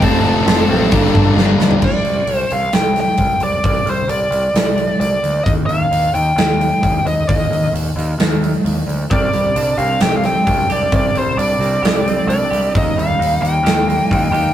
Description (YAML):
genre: quiet-loud alternative rock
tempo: 132 BPM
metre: 4/4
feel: straight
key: unclear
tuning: A4 = 440 Hz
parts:
  - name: biting lead guitar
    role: melody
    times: 0.0-14.5 s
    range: A4 to A5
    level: -17 LUFS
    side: equal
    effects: overdrive
  - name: bright studio string section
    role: sustained chords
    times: 0.0-1.8 s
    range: none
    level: barely audible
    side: none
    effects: none
  - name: sludgy distorted guitar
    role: riff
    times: 0.0-1.8 s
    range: F2 to D4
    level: -18 LUFS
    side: right 2 dB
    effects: overdrive
  - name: thick fuzz guitar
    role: riff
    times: 0.0-1.8 s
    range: F2 to D4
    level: -16 LUFS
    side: left 4 dB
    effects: distortion
  - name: growling picked electric bass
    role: bass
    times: 0.0-14.5 s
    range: F1 to Eb2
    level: -21 LUFS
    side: equal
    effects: overdrive
  - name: big rock drum kit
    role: drums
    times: 0.0-14.4 s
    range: crash cymbal, hi-hat, kick drum, snare drum, toms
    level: -18 LUFS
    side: right 1 dB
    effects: none
  - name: clean electric guitar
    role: arpeggios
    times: 9.1-14.5 s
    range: C3 to G4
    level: -23 LUFS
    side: right 3 dB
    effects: slapback echo
room: moderate booth ambience, RT60 0.2 s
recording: rough rehearsal-room recording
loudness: -13 LUFS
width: side -11 dB against mid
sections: 0.0-1.8 A section; 1.8-14.5 B section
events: drum fill 1.4-1.8; half time 1.8-14.5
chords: 0.0 F; 0.9 Gm; 1.8 Csus2; 5.5 Eb; 9.1 Csus2; 12.7 Eb